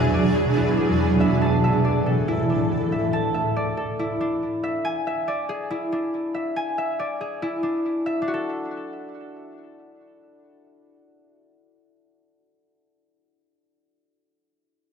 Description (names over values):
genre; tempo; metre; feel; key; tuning
hip hop; 140 BPM; 4/4; half-time; D lydian; A4 = 441 Hz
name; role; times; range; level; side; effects
granular cloud pad; sustained chords; 0.0-3.1 s; D2 to A4; -20 LUFS; right 1 dB; built-in reverb
concert harp; arpeggios; 0.0-13.2 s; D4 to A5; -25 LUFS; left 1 dB; ping-pong delay
room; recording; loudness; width
moderate lush hall reverb, RT60 2.0 s; dark, warm production; -21 LUFS; side -6 dB against mid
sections
0.0-8.3 A section; 8.3-11.7 B section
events
none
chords
0.0 E7; 1.4 Dsus2; 4.8 E7; 8.3 D